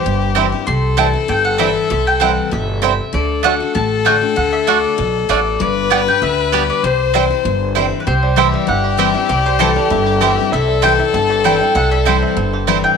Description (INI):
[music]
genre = bluegrass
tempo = 195 BPM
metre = 4/4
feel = straight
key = C lydian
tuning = A4 = 435 Hz
[part]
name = mandolin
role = melody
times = 0.0-13.0 s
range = A4 to C6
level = -20 LUFS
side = equal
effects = none
[part]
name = clear fiddle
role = second line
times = 0.0-12.8 s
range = G4 to C5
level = -18 LUFS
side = left 8 dB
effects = slapback echo
[part]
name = picked steel-string acoustic guitar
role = accompaniment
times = 0.0-13.0 s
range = G2 to G4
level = -22 LUFS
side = left 10 dB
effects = none
[part]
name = upright bass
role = bass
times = 0.1-12.8 s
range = G1 to D2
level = -20 LUFS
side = right 2 dB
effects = none
[part]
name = mandolin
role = stabs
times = 0.3-12.8 s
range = A3 to G5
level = -18 LUFS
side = right 14 dB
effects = none
[part]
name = bluegrass banjo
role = melody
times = 0.4-13.0 s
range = E3 to G4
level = -24 LUFS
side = right 6 dB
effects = none
[sound]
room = moderate spring reverb, RT60 1.6 s, studio reverb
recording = 1960s-style stereo with parts hard left and right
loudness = -13 LUFS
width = side -6 dB against mid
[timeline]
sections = 0.0-8.1 A section; 8.1-13.0 A section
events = none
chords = 0.0 C; 3.1 D; 5.6 G; 6.8 C